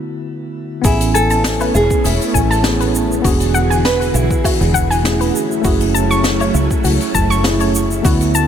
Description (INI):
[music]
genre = sunset chillout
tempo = 100 BPM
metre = 4/4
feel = swing 54% on 16ths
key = A major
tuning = A4 = 440 Hz
[part]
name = tine electric piano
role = accompaniment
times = 0.0-8.5 s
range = D3 to G#5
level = -20 LUFS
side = equal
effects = auto-pan, tape echo, shimmer reverb
[part]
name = soft string machine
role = sustained chords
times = 0.8-8.5 s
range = D3 to G#4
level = -22 LUFS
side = equal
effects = ensemble chorus, shimmer reverb
[part]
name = soft round pluck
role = arpeggios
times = 0.8-8.5 s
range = F#4 to C#6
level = -21 LUFS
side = left 2 dB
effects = chorus, tape echo, shimmer reverb
[part]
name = fingered electric bass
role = bass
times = 0.8-8.5 s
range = E1 to D2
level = -18 LUFS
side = equal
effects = tube saturation
[part]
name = electronic kick drum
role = drums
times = 0.8-8.2 s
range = none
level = -18 LUFS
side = equal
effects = none
[part]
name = jazz brush drum kit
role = drums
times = 0.8-8.5 s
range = hi-hat, shaker, snare drum, woodblock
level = -22 LUFS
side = left 1 dB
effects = low-pass filter on hats, low-pass filter on snare, low-pass filter on perc, low-pass filter on room
[part]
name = nylon-string guitar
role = melody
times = 0.9-5.3 s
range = E4 to B4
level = -22 LUFS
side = right 2 dB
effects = tape echo, shimmer reverb
[sound]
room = light reverb, small room reverb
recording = none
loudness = -12 LUFS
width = side -9 dB against mid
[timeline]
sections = 0.8-8.5 A section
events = break 0.0-0.8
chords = 0.0 D6; 0.8 Amaj9; 3.2 E9; 5.3 F#m7